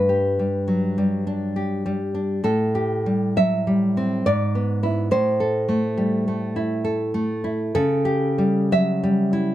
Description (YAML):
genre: romantic piece for solo classical guitar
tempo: 68 BPM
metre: 3/4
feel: rubato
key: unclear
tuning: A4 = 440 Hz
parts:
  - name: nylon-string guitar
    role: solo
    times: 0.0-9.5 s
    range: G2 to E5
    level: -19 LUFS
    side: equal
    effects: none
room: moderate studio reverb, RT60 0.8 s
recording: dark, warm production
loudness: -19 LUFS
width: side -13 dB against mid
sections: 0.0-9.5 A section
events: none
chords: 0.0 G; 2.4 Am7; 4.2 E7/G#; 5.1 Am; 7.7 A7/C#